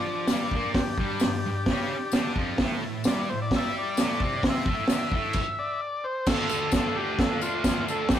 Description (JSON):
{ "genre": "garage rock duo or trio", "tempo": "130 BPM", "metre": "4/4", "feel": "straight", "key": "D minor", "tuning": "A4 = 440 Hz", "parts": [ { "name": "overdriven combo organ", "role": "melody", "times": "0.0-8.2 s", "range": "F4 to E5", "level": "-30 LUFS", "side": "left 2 dB", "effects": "none" }, { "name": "combo organ", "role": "sustained chords", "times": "0.0-8.2 s", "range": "D4 to E5", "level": "-40 LUFS", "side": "left 2 dB", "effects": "none" }, { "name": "thick fuzz guitar", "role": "riff", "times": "0.0-8.2 s", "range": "F2 to G4", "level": "-30 LUFS", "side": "right 1 dB", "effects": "distortion" }, { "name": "vintage drum kit", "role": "drums", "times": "0.3-8.2 s", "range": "crash cymbal, hi-hat, kick drum, snare drum", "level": "-26 LUFS", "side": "equal", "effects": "none" }, { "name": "tambourine", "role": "percussion", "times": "0.3-8.2 s", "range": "none", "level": "-39 LUFS", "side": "left 7 dB", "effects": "none" } ], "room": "moderate studio reverb, RT60 0.5 s", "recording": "rough rehearsal-room recording", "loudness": "-24 LUFS", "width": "side -10 dB against mid", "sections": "0.0-6.3 A section; 6.3-8.2 B section", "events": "stop 5.4-6.3", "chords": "0.0 G5; 2.6 A5; 6.3 Dm" }